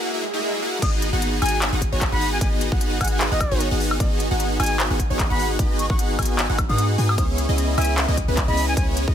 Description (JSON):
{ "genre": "future bass", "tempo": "151 BPM", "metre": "4/4", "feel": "swing 55% on 16ths, half-time", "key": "G# minor", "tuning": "A4 = 435 Hz", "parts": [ { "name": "supersaw chords", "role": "riff", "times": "0.0-9.1 s", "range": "A#3 to G#5", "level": "-24 LUFS", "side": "equal", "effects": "sidechain pumping" }, { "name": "swell", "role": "sound effects", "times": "0.1-0.8 s", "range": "none", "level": "-33 LUFS", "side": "right 1 dB", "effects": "none" }, { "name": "breathy bright concert flute", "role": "melody", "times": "0.8-8.8 s", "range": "D#5 to D#6", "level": "-29 LUFS", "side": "left 1 dB", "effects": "sidechain pumping, digital delay" }, { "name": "wide unison pluck", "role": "arpeggios", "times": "0.8-9.1 s", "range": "B4 to G#5", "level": "-33 LUFS", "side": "right 1 dB", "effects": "sidechain pumping" }, { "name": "warm 808-style bass", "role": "bass", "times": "0.8-9.1 s", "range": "G#1 to G#2", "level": "-24 LUFS", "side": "equal", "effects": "sidechain pumping" }, { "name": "electronic kick drum", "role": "drums", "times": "0.8-9.1 s", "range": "none", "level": "-23 LUFS", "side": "equal", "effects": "studio ambience" }, { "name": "trap drum kit", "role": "drums", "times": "0.8-9.1 s", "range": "crash cymbal, handclaps, hi-hat, woodblock", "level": "-27 LUFS", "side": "left 2 dB", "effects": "studio ambience" } ], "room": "digital ambience", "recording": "high-pass filter", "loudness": "-19 LUFS", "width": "side -9 dB against mid", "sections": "0.8-9.1 A section", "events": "break 0.0-0.8; swell 0.1-0.8; drop 0.8-9.1", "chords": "0.0 F#9; 0.8 G#m7; 7.2 C#m7" }